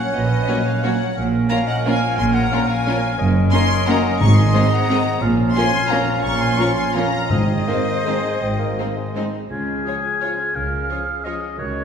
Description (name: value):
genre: classical, orchestral ballroom waltz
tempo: 156-192 BPM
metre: 3/4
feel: rubato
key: Db major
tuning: A4 = 441 Hz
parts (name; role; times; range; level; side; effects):
- warm symphonic violin section; melody; 0.0-11.3 s; Db5 to Db6; -26 LUFS; left 2 dB; none
- bright clarinet; second line; 0.0-11.8 s; F4 to C#5; -31 LUFS; left 2 dB; none
- concert flute; second line; 0.0-11.8 s; B4 to Gb6; -27 LUFS; left 3 dB; none
- warm oboe; second line; 0.0-11.8 s; Db5 to Ab5; -27 LUFS; equal; none
- mellow bassoon; accompaniment; 0.0-11.8 s; Db3 to Eb4; -28 LUFS; right 1 dB; none
- rich symphonic cello section; bass; 0.1-11.8 s; Gb2 to Db3; -23 LUFS; right 1 dB; none
- rich studio double bass section; bass; 0.2-11.8 s; Gb1 to Db2; -24 LUFS; right 2 dB; none
- rich symphonic violin section; second line; 0.5-11.3 s; Db4 to Eb5; -32 LUFS; left 2 dB; none
- rich symphonic viola section; accompaniment; 0.5-11.3 s; F3 to F4; -27 LUFS; right 1 dB; none
- warm French horn section; sustained chords; 0.5-11.4 s; F3 to Db4; -30 LUFS; left 2 dB; none
- warm trombone section; sustained chords; 0.5-9.3 s; F2 to F#3; -30 LUFS; right 2 dB; none
- timpani; percussion; 4.2-4.7, 7.3-7.8 s; Ab2; -23 LUFS; left 2 dB; none
room: wet scoring stage reverb, RT60 1.6 s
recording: heard from further back in the room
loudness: -16 LUFS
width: side -7 dB against mid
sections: 0.0-9.5 A section; 9.5-11.8 B section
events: none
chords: 0.0 F#/A#; 1.2 Bbm7; 3.2 Ebm7/Gb; 4.2 Ab; 5.2 Bbm; 7.3 Ab; 9.5 Db